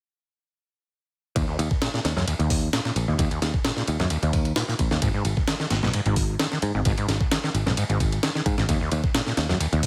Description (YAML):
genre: breakbeat, breaks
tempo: 131 BPM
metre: 4/4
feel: straight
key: Eb minor pentatonic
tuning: A4 = 435 Hz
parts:
  - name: overdriven acid bass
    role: riff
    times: 1.4-9.8 s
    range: Eb2 to Eb3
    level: -30 LUFS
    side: equal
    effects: distortion, subtle chorus, vintage 12-bit sampler grit, delay
  - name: picked electric bass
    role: bass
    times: 1.4-9.9 s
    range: Ab1 to Ab2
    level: -27 LUFS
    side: equal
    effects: none
  - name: breakbeat sampler-style drum kit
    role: drums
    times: 1.4-9.9 s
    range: hi-hat, kick drum, ride cymbal, snare drum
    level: -28 LUFS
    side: equal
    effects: none
room: light reverb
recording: heavily compressed radio sound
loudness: -24 LUFS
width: mono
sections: 1.4-9.9 A section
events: none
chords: 1.4 Eb5; 5.0 Ab5; 8.7 N.C.